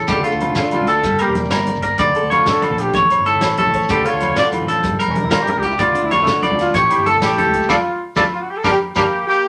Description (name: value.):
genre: highlife guitar band.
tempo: 126 BPM (dotted quarters).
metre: 12/8.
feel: straight.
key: D harmonic minor.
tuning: A4 = 441 Hz.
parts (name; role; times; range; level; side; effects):
picked steel-string acoustic guitar; accompaniment; 0.0-9.0 s; A2 to D5; -27 LUFS; equal; none.
clean electric guitar; arpeggios; 0.0-9.0 s; D4 to D5; -19 LUFS; equal; none.
fingered electric bass; bass; 0.0-9.0 s; E1 to D3; -28 LUFS; equal; none.
shekere; percussion; 0.0-9.0 s; none; -33 LUFS; equal; none.
vintage drum kit; drums; 0.1-9.0 s; hi-hat, kick drum, snare drum; -29 LUFS; equal; none.
agogo bells; percussion; 0.1-9.0 s; none; -28 LUFS; equal; none.
congas; percussion; 0.1-9.0 s; none; -30 LUFS; equal; none.
clear horn section; melody; 0.7-9.5 s; A3 to D5; -22 LUFS; equal; none.
room: wet studio reverb, RT60 0.7 s.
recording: none.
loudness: -16 LUFS.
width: mono.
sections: 0.0-9.5 A section.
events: horn section solo 0.0-9.5; band accent 7.7-9.5.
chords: 0.1 Dm; 1.0 Gm; 2.0 Dm; 2.9 A; 3.9 Dm; 4.8 Gm; 5.8 Dm; 6.8 A; 7.7 Dm; 8.7 Gm.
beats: | 0.09 0.57 1.04 1.52 | 2.00 2.47 2.95 3.42 | 3.90 4.37 4.85 5.33 | 5.80 6.28 6.75 7.23 | 7.70 8.18 8.65 9.13.